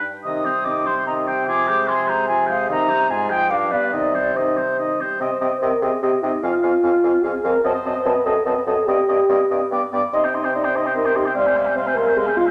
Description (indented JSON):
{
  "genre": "quick classical-period movement for wind quintet",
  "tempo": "147 BPM",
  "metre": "3/4",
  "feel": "straight",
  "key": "C minor",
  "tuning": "A4 = 439 Hz",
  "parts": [
    { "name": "warm oboe", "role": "second line", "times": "0.0-12.5 s", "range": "Ab4 to F5", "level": "-26 LUFS", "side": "equal", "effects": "none" },
    { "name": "dark French horn", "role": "accompaniment", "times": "0.0-12.5 s", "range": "Eb3 to Eb5", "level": "-24 LUFS", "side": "equal", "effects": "none" },
    { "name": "warm clarinet", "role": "accompaniment", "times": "0.0-12.5 s", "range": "Ab3 to Ab4", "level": "-33 LUFS", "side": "equal", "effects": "none" },
    { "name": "hollow concert flute", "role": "melody", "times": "0.2-12.5 s", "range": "C5 to Eb6", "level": "-27 LUFS", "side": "equal", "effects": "none" },
    { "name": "clear bassoon", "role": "bass", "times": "0.3-12.5 s", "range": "F2 to C3", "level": "-27 LUFS", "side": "equal", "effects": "none" }
  ],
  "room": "wet recital hall reverb, RT60 1.4 s",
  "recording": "none",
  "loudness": "-20 LUFS",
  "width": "mono",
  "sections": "0.0-5.2 A section; 5.2-12.5 B section",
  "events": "none",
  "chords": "0.2 Cm; 1.5 Fm/C; 2.7 Cm; 3.1 Fm/Ab; 3.5 G7; 3.9 Cm; 6.4 Fm; 7.6 F#dim7; 8.9 Cm/G; 9.7 G; 10.1 Cm; 11.4 Fm/C",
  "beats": "| 0.25 0.66 1.07 | 1.48 1.89 2.29 | 2.70 3.10 3.51 | 3.93 4.36 4.79 | 5.21 5.62 6.03 | 6.43 6.83 7.24 | 7.65 8.05 8.46 | 8.88 9.30 9.72 | 10.14 10.55 10.96 | 11.36 11.77 12.17"
}